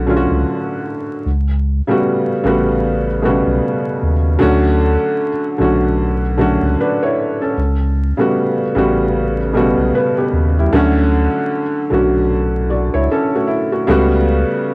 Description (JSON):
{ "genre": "lo-fi hip hop", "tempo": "76 BPM", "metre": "4/4", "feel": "swing 59% on 16ths", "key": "D major", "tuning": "A4 = 439 Hz", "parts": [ { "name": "felt-muted upright piano", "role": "accompaniment", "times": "0.0-14.7 s", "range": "B2 to D5", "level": "-14 LUFS", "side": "equal", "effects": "cassette tape, low-pass filter" }, { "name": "warm sub bass", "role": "bass", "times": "0.0-14.4 s", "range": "A1 to Eb2", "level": "-16 LUFS", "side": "equal", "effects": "none" } ], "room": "light reverb", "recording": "home recording on cassette, vinyl crackle", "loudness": "-13 LUFS", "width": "side -28 dB against mid", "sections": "0.0-14.7 A section", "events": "none", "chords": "0.0 Dmaj7; 1.3 A13; 4.4 Dmaj7; 7.6 A13; 10.7 Dmaj7; 13.9 A13", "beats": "0.46 | 1.25 2.04 2.83 3.62 | 4.41 5.20 5.99 6.78 | 7.57 8.36 9.15 9.94 | 10.73 11.52 12.30 13.10 | 13.88 14.67" }